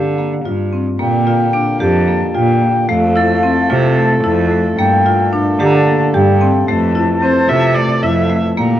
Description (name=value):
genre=contemporary instrumental, chamber music in an uneven meter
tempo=222 BPM (eighths)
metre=7/8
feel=straight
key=F major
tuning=A4 = 443 Hz
part: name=mellow wooden flute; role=melody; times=0.0-8.8 s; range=F5 to Bb5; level=-18 LUFS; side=left 2 dB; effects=none
part: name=marimba with hard mallets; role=arpeggios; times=0.0-8.8 s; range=A3 to G4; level=-17 LUFS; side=left 3 dB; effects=none
part: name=clear cello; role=bass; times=0.0-8.8 s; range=F2 to D3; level=-16 LUFS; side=right 2 dB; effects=none
part: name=hand-pumped harmonium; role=sustained chords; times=1.0-8.8 s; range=Bb2 to A4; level=-22 LUFS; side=right 1 dB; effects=none
part: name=crotales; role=texture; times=1.5-4.2 s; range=A6 to D7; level=-25 LUFS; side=right 4 dB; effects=none
part: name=warm viola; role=second line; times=7.2-8.4 s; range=C5 to E5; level=-17 LUFS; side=right 2 dB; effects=none
room=moderate studio reverb, RT60 0.8 s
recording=worn, warbling old tape, cassette tape, warbly pitch drift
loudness=-11 LUFS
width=side -11 dB against mid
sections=1.0-8.8 A section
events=none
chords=0.0 Gm7; 1.0 Bb6; 2.9 Fmaj7; 4.8 Gmadd9; 6.7 Fmaj7